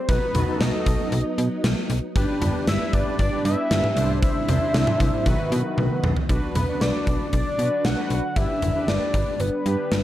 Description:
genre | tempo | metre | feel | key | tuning
synth-pop | 116 BPM | 4/4 | straight | unclear | A4 = 439 Hz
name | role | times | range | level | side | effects
fat analog lead | melody | 0.0-10.0 s | B4 to F#5 | -26 LUFS | equal | none
soft string machine | sustained chords | 0.0-10.0 s | C3 to E4 | -30 LUFS | equal | ensemble chorus
analog synth brass | accompaniment | 0.1-9.9 s | D#3 to C5 | -29 LUFS | left 1 dB | chorus
slap-like FM bass | bass | 0.1-10.0 s | G1 to B2 | -24 LUFS | equal | none
gated 80s drum kit | drums | 0.1-10.0 s | hi-hat, kick drum, snare drum, toms | -24 LUFS | equal | none
room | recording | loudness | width
moderate plate reverb, RT60 1.1 s | dark, warm production | -20 LUFS | side -13 dB against mid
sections
0.0-6.3 A section; 6.3-10.0 B section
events
drum fill 5.8-6.3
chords
0.1 B; 2.2 G; 4.0 Cadd9; 5.3 B; 6.3 Bm; 8.4 G

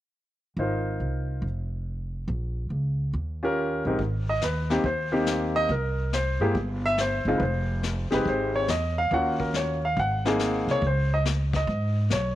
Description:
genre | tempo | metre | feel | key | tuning
jazz piano trio | 140 BPM | 4/4 | swing 67% on 8ths | Ab major | A4 = 443 Hz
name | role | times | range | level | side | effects
clear baby grand piano | melody | 0.6-12.4 s | Ab2 to Gb5 | -25 LUFS | equal | none
upright bass | bass | 0.6-12.4 s | F1 to Ab2 | -28 LUFS | equal | none
vintage brush drum kit | drums | 4.0-12.4 s | brushed snare drum, hi-hat, kick drum, snare drum | -34 LUFS | left 6 dB | none
room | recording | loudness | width
light reverb, small room ambience | 1960s-style stereo | -24 LUFS | side -14 dB against mid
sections
0.6-4.0 A section; 4.0-12.4 B section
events
none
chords
0.6 Ab69; 1.4 N.C.; 2.3 Bbm; 3.1 Eb7; 4.0 Abmaj7; 5.7 C7(no3); 7.4 Fm7; 9.1 Ebm7; 10.0 Ab9; 10.8 Dbsus2

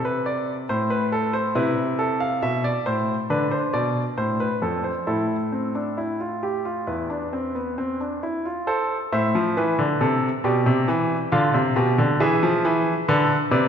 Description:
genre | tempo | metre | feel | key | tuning
classical, baroque-style 3-part fugue for grand piano | 68 BPM | 4/4 | straight | A minor | A4 = 441 Hz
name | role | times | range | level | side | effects
clear baby grand piano | solo | 0.0-13.7 s | E2 to F5 | -20 LUFS | equal | none
room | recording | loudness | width
wet scoring stage reverb, RT60 1.8 s | minimal, uncompressed stereo recording | -20 LUFS | side -8 dB against mid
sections
0.0-8.7 A section; 8.7-13.7 B section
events
none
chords
0.0 Am; 3.3 Dm; 5.1 Esus4/A; 6.9 E5; 8.7 Am; 10.4 G/B; 12.2 E7

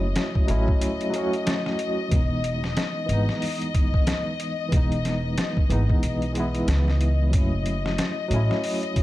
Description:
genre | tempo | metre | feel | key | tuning
trip hop | 92 BPM | 4/4 | swing 60% on 16ths | unclear | A4 = 440 Hz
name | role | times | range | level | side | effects
tine electric piano | accompaniment | 0.0-9.0 s | E3 to F#4 | -27 LUFS | equal | overdrive, tremolo, tape echo
dark studio string section | sustained chords | 0.0-9.0 s | D#5 | -31 LUFS | left 5 dB | none
upright bass | bass | 0.0-8.5 s | E1 to C#2 | -24 LUFS | equal | none
trip hop sampler-style drum kit | drums | 0.2-9.0 s | hi-hat, kick drum, snare drum | -24 LUFS | equal | overdrive, studio reverb
room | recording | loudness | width
small room ambience | dark, warm production | -21 LUFS | side -16 dB against mid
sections
0.0-9.0 A section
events
none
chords
0.0 F#m7; 2.1 Emaj7; 7.3 F#m7

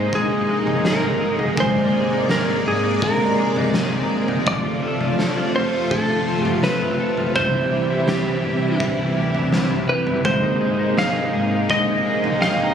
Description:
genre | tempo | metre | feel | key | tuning
dream pop | 83 BPM | 4/4 | straight | unclear | A4 = 439 Hz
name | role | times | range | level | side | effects
clean lap steel guitar | melody | 0.0-12.7 s | G4 to F5 | -23 LUFS | right 2 dB | tape echo
string machine, violins | sustained chords | 0.0-12.7 s | C3 to D5 | -22 LUFS | equal | ensemble chorus
electric guitar at the edge of break-up | arpeggios | 0.0-12.7 s | C3 to C5 | -25 LUFS | left 3 dB | wide subtle chorus, tape echo
round analog bass | bass | 0.0-12.7 s | F1 to C3 | -31 LUFS | equal | none
soft synth bell | texture | 0.0-12.7 s | C5 to Bb5 | -34 LUFS | right 2 dB | none
oversized low-tuned drum kit | drums | 0.1-12.7 s | kick drum, snare drum, toms | -25 LUFS | equal | none
room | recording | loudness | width
moderate huge ambient reverb, RT60 5.9 s | recorded on a phone in the room, studio reverb | -17 LUFS | side -8 dB against mid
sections
0.0-12.7 A section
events
none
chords
0.0 Abadd9; 4.5 F; 7.4 C; 10.2 Abadd9

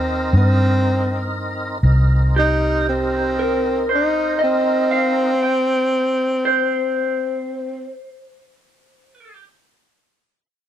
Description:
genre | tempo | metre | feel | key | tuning
slow blues | 39 BPM (dotted quarters) | 12/8 | straight | C minor | A4 = 438 Hz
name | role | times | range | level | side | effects
breathy tenor saxophone | melody | 0.0-7.9 s | C4 to Eb4 | -20 LUFS | equal | none
tonewheel organ | sustained chords | 0.0-5.3 s | C4 to Bb4 | -27 LUFS | equal | overdrive, chorus vibrato, slow rotary speaker
vintage muted fingered electric bass | bass | 0.0-5.3 s | C2 to G2 | -18 LUFS | equal | none
electric guitar through a small old amp | second line | 2.4-9.4 s | G4 to G5 | -21 LUFS | equal | none
room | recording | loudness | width
light reverb | none | -16 LUFS | side -10 dB against mid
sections
0.0-1.8 A section; 1.8-8.0 B section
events
slowing down 0.0-1.8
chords
0.0 Cm7

